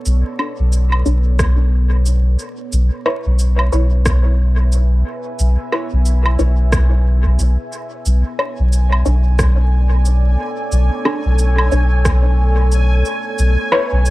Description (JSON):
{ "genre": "ambient dub", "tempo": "90 BPM", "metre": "4/4", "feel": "swing 60% on 16ths", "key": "B dorian", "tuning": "A4 = 440 Hz", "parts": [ { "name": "deep dark ambient pad", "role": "sustained chords", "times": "0.0-14.1 s", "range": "B3 to G#5", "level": "-27 LUFS", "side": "equal", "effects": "chorus, built-in reverb" }, { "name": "soft dub sub bass", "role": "bass", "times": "0.1-14.1 s", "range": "B1", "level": "-13 LUFS", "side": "equal", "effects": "none" }, { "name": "electronic cabasa, woodblock and rim click", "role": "drums", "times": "0.1-14.1 s", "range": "none", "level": "-24 LUFS", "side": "equal", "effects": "studio ambience, dub echo" }, { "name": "filtered dub chord stab", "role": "stabs", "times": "0.4-13.9 s", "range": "D4 to C#5", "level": "-22 LUFS", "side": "left 1 dB", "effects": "phaser, lush chorus, dub echo" }, { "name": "electronic kick drum", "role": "drums", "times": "1.4-12.2 s", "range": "none", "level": "-18 LUFS", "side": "equal", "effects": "studio ambience" }, { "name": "bubbling stepped-filter texture", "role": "texture", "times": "8.6-14.1 s", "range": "G#5", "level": "-26 LUFS", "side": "right 1 dB", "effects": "chorus, built-in reverb" } ], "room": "little or no reverb", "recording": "vinyl crackle", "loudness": "-13 LUFS", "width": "side -18 dB against mid", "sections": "0.0-14.1 A section", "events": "fade-in on ambient pad 0.0-14.1; filter sweep on synth stab 0.0-14.1", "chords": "0.0 Bm9; 2.7 C#m7/B; 8.1 Bm9; 13.4 C#m7/B" }